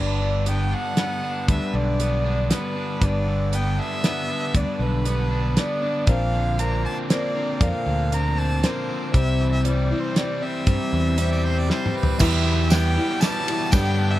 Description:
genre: folk rock and heartland rock.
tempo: 118 BPM.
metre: 3/4.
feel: straight.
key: G major.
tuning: A4 = 438 Hz.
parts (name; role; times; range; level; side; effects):
warm violin; melody; 0.0-14.2 s; B4 to Bb5; -28 LUFS; equal; digital delay.
picked steel-string acoustic guitar; accompaniment; 0.0-14.2 s; G2 to B4; -29 LUFS; left 4 dB; none.
crunchy overdriven guitar; riff; 0.0-14.2 s; E2 to G4; -28 LUFS; equal; none.
fingered electric bass; bass; 0.0-14.2 s; G1 to G2; -22 LUFS; equal; none.
damped 70s drum kit; drums; 0.5-13.8 s; crash cymbal, hi-hat, kick drum, ride cymbal, snare drum, toms; -22 LUFS; equal; none.
clear harmonica; second line; 11.2-12.2 s; B4 to E5; -30 LUFS; right 5 dB; none.
dark grand piano; accompaniment; 12.2-14.2 s; D4 to B4; -34 LUFS; right 3 dB; none.
tambourine; percussion; 12.2-13.9 s; none; -34 LUFS; right 6 dB; none.
room: light reverb.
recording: dark, warm production.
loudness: -20 LUFS.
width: side -15 dB against mid.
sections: 0.0-12.2 A section; 12.2-14.2 B section.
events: drum fill 11.7-12.2.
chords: 0.0 G; 6.1 Bbadd9; 9.1 C; 12.2 Em.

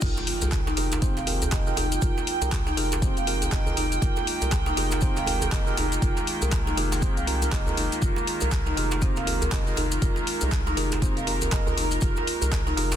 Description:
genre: afro house.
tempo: 120 BPM.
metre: 4/4.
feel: swing 59% on 16ths.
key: F minor.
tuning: A4 = 440 Hz.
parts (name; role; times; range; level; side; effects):
dark studio string section; sustained chords; 0.0-13.0 s; Eb3 to G5; -30 LUFS; right 3 dB; sidechain pumping.
marimba with medium mallets; arpeggios; 0.0-12.9 s; C4 to F5; -32 LUFS; left 2 dB; sidechain pumping, ping-pong delay.
tine electric piano; stabs; 0.0-13.0 s; Eb4 to C5; -34 LUFS; right 4 dB; medium stereo tremolo, sidechain pumping, ping-pong delay.
round analog bass; bass; 0.0-13.0 s; F1 to C2; -29 LUFS; equal; sidechain pumping.
deep house drum kit; drums; 0.0-13.0 s; crash cymbal, handclaps, hi-hat, rim click; -32 LUFS; left 2 dB; soft clipping on snare.
electronic kick drum; drums; 0.0-12.6 s; none; -26 LUFS; equal; none.
maracas; percussion; 0.0-13.0 s; none; -37 LUFS; left 4 dB; none.
swell and impact; sound effects; 0.0-2.0 s; none; -37 LUFS; equal; none.
djembe; percussion; 0.2-13.0 s; none; -35 LUFS; right 2 dB; none.
room: studio reverb.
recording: dense, heavily limited modern master.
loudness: -22 LUFS.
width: side -10 dB against mid.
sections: 0.0-13.0 A section.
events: drop 0.0-13.0; impact 0.0-2.0.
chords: 0.0 Fm11.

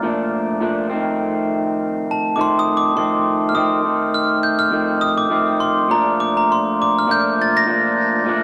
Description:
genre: indie pop.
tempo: 102 BPM.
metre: 4/4.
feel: swing 55% on 16ths.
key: Bb major.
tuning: A4 = 439 Hz.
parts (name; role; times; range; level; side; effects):
electric guitar through a small old amp; accompaniment; 0.0-8.4 s; F2 to D4; -22 LUFS; equal; subtle chorus, warbly pitch drift.
glockenspiel with rubber mallets; melody; 2.1-8.1 s; A5 to Bb6; -20 LUFS; equal; subtle chorus, tape echo.
room: light reverb, small room reverb.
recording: none.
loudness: -18 LUFS.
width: mono.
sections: 0.0-8.4 A section.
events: glockenspiel solo 0.0-8.4.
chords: 0.0 Bbmaj7; 0.9 F7; 5.9 Bbmaj7.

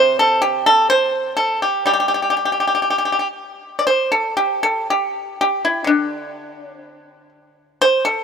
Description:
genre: chinese traditional, Chinese solo plucked strings.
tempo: 61 BPM.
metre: 2/4.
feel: rubato.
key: G zhi mode.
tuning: A4 = 443 Hz.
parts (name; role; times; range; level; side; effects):
pipa; solo; 0.0-8.2 s; C3 to D5; -15 LUFS; equal; none.
room: moderate lush hall reverb, RT60 2.8 s.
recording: rough home demo mix.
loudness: -15 LUFS.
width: side -7 dB against mid.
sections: 0.0-8.2 A section.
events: none.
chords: none.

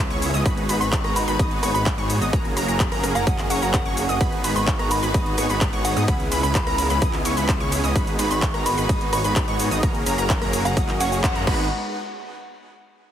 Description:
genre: EDM, festival progressive house.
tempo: 128 BPM.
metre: 4/4.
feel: straight.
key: G# minor.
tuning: A4 = 439 Hz.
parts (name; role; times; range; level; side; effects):
rich chamber string section; sustained chords; 0.0-11.7 s; C#3 to B4; -31 LUFS; left 1 dB; sidechain pumping.
wide unison pluck; arpeggios; 0.0-11.6 s; A#5 to D#6; -30 LUFS; equal; sidechain pumping, digital delay.
supersaw chords; riff; 0.0-11.6 s; A#3 to D#5; -27 LUFS; right 1 dB; sidechain pumping, digital delay.
wide detuned saw bass; bass; 0.0-11.7 s; F#1 to G#2; -26 LUFS; equal; chorus, sidechain pumping.
big-room dance drum kit; drums; 0.1-11.6 s; crash cymbal, handclaps, hi-hat, ride cymbal, rim click, shaker; -28 LUFS; equal; overdrive.
electronic kick drum; drums; 0.5-11.6 s; none; -23 LUFS; equal; overdrive.
soft synth bell; melody; 0.8-11.7 s; F#5 to C#6; -28 LUFS; right 1 dB; chorus, digital delay.
room: light reverb, digital ambience.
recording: heavily compressed radio sound.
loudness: -19 LUFS.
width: side -10 dB against mid.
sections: 0.0-11.7 A section; 11.7-13.1 B section.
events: drop 0.0-11.7; band accent 11.2.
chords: 0.5 G#m7; 2.3 F#add9; 4.2 G#m7; 6.1 C#m7; 8.0 G#m7; 9.8 F#add9; 11.5 G#m7; 11.7 N.C..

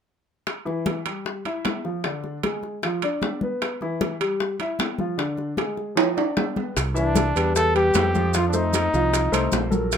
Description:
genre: Afro-Cuban jazz.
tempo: 152 BPM.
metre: 4/4.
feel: straight.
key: unclear.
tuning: A4 = 440 Hz.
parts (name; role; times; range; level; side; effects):
bongos; percussion; 0.5-10.0 s; none; -30 LUFS; left 5 dB; none.
congas; percussion; 0.5-10.0 s; none; -29 LUFS; left 3 dB; none.
timbales; percussion; 0.5-10.0 s; none; -28 LUFS; right 7 dB; none.
warm grand piano; accompaniment; 0.7-10.0 s; D3 to F5; -26 LUFS; left 1 dB; none.
modern bright fingered electric bass; bass; 6.8-10.0 s; Bb1 to F2; -24 LUFS; right 1 dB; none.
maracas; percussion; 6.8-10.0 s; none; -31 LUFS; right 10 dB; none.
mellow trumpet; melody; 7.0-9.7 s; D4 to A4; -23 LUFS; left 1 dB; none.
room: moderate club reverb, RT60 0.6 s.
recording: minimal, uncompressed stereo recording.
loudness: -21 LUFS.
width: side -8 dB against mid.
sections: 0.5-6.8 A section; 6.8-10.0 B section.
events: drum fill 6.0-6.8.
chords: 0.5 Em; 2.0 Ddim7; 3.6 Em; 5.2 Ddim7; 6.8 Cmaj9; 8.3 F7b9.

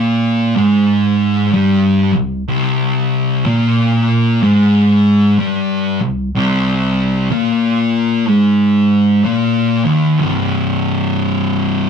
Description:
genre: metal.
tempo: 62 BPM.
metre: 4/4.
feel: swing 64% on 8ths.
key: C minor.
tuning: A4 = 436 Hz.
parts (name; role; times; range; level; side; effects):
fuzz guitar; solo; 0.0-11.9 s; C2 to Bb3; -12 LUFS; equal; distortion.
room: wet small room reverb, RT60 0.5 s.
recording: rough rehearsal-room recording.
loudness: -12 LUFS.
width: side -7 dB against mid.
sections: 0.0-10.2 A section; 10.2-11.9 B section.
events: none.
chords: 0.0 C5.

